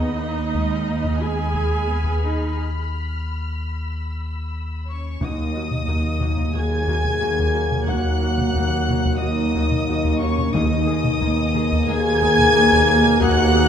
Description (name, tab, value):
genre	cinematic, suspense film score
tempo	90 BPM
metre	4/4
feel	straight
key	Eb minor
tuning	A4 = 441 Hz
part	muted chamber violin section	melody	0.0-13.7 s	Eb5 to Ab6	-25 LUFS	equal	none
part	muted chamber violin section	second line	0.0-13.7 s	Db5 to Ab5	-27 LUFS	left 1 dB	none
part	muted chamber viola section	accompaniment	0.0-13.6 s	Ab3 to Ab4	-31 LUFS	right 1 dB	none
part	mellow French horn section	sustained chords	0.0-13.7 s	Cb4 to Ab4	-24 LUFS	left 4 dB	none
part	muted studio cello section	bass	0.0-13.7 s	Eb2 to Eb4	-25 LUFS	right 2 dB	none
part	muted symphonic double bass section	bass	0.0-13.7 s	Eb2	-27 LUFS	right 3 dB	none
part	warm sub bass	drone	0.0-13.7 s	Eb2	-26 LUFS	left 1 dB	none
part	muted studio violin section	texture	0.0-4.8, 10.6-13.7 s	Ab5 to F6	-35 LUFS	left 6 dB	none
part	taiko ensemble	drums	0.5-13.7 s	none	-27 LUFS	equal	none
part	clear trombone section	sustained chords	5.2-13.7 s	Cb3 to Bb3	-27 LUFS	equal	none
part	timpani	percussion	10.5-11.5 s	Eb3	-27 LUFS	left 2 dB	none
room	moderate scoring stage reverb, RT60 1.7 s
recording	none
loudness	-18 LUFS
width	side -8 dB against mid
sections	0.0-5.2 A section; 5.2-13.7 A section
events	break 2.5-5.2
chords	0.0 Abmadd9/Eb; 5.2 Ebm; 10.5 Abmadd9/Eb